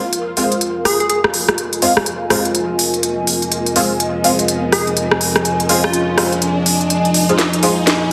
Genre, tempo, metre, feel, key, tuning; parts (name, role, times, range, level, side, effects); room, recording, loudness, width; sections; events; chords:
bass house; 124 BPM; 4/4; swing 61% on 16ths; F minor; A4 = 441 Hz
dark analog pad; sustained chords; 0.7-8.1 s; F3 to Bb4; -25 LUFS; equal; chorus
riser; sound effects; 0.0-8.1 s; -29 LUFS; equal
granular cloud pad; texture; 0.0-8.1 s; F4 to Bb5; -24 LUFS; equal; built-in reverb
garage drum kit; drums; 0.1-8.0 s; hi-hat, rim click, snare drum; -19 LUFS; equal; soft clipping on snare
band-passed chord stab; stabs; 0.4-7.7 s; Ab3 to F4; -23 LUFS; equal; phaser, ensemble chorus, delay
plucky unison lead; melody; 0.9-1.2, 4.7-6.3 s; F4 to Ab4; -23 LUFS; equal; delay
moderate plate reverb, RT60 1.0 s; dense, heavily limited modern master, high-pass filter; -16 LUFS; mono
0.0-8.1 A section
build-up 0.0-8.1; riser 0.0-8.1; filter sweep on analog synth pad 0.0-8.1; drum fill 7.4-8.1
0.0 Fm